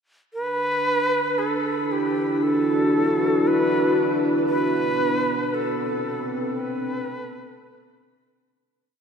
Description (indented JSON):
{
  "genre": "ambient",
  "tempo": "57 BPM",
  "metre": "4/4",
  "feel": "straight",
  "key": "B phrygian",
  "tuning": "A4 = 440 Hz",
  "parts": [
    { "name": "bright reedy shakuhachi", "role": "melody", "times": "0.3-8.2 s", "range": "G4 to B4", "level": "-24 LUFS", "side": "equal", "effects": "shimmer reverb, tape echo" },
    { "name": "dark analog pad", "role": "sustained chords", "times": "0.4-8.7 s", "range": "B3 to B4", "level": "-22 LUFS", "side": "equal", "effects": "lush chorus, shimmer reverb" }
  ],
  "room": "wet cathedral reverb, RT60 5.6 s",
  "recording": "dark, warm production",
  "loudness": "-20 LUFS",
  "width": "side -6 dB against mid",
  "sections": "0.3-8.7 A section",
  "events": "fade-out 4.5-8.7",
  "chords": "0.3 Bm; 4.5 Amadd9/B",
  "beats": "| 0.35 1.40 2.45 3.49 | 4.53 5.56 6.60 7.66"
}